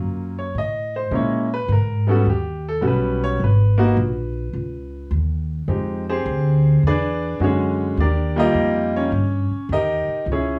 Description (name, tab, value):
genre	jazz piano trio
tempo	105 BPM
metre	4/4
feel	swing 68% on 8ths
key	unclear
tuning	A4 = 441 Hz
part	clear grand piano	melody	0.0-10.6 s	D3 to Eb5	-24 LUFS	equal	none
part	upright bass	bass	0.0-10.6 s	Ab1 to Bb2	-23 LUFS	equal	none
room	moderate studio ambience, RT60 0.5 s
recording	heard from further back in the room, small room ambience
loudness	-20 LUFS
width	mono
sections	0.0-10.6 A section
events	grand piano solo 0.0-10.6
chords	0.0 Gbmaj7; 1.1 Bbm7b5; 2.3 Eb7alt; 3.4 Abmadd9; 5.7 Fm9; 6.8 E13; 8.0 Ebmaj9